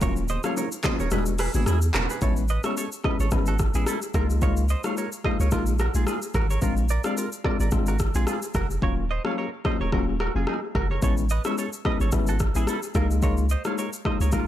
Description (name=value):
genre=afrobeats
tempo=109 BPM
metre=4/4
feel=swing 55% on 16ths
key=unclear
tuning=A4 = 438 Hz
part: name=tine electric piano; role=accompaniment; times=0.0-14.5 s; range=Gb3 to Gb4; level=-30 LUFS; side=left 5 dB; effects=lush chorus
part: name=direct-recorded clean electric guitar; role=riff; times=0.0-14.4 s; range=Eb4 to F5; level=-32 LUFS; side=right 5 dB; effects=analog chorus, ping-pong delay
part: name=punchy sub bass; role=bass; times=0.0-14.5 s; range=Eb1 to E2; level=-24 LUFS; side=equal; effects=none
part: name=deep house drum kit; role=drums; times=0.0-14.5 s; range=handclaps, hi-hat, kick drum, rim click, shaker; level=-27 LUFS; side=equal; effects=overdrive
part: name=congas and bongos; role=percussion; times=0.0-2.1 s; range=none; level=-34 LUFS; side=right 2 dB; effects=none
room=digital ambience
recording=none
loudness=-22 LUFS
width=side -12 dB against mid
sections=0.0-2.2 A section; 2.2-14.5 B section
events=kick muted 1.1-2.2; hi-hats muted 8.8-11.0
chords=0.0 Ebm7; 1.1 E7; 2.2 Amaj7; 4.1 Db69; 6.6 Bb7; 8.8 Ebm7; 11.0 Amaj7; 13.0 Db69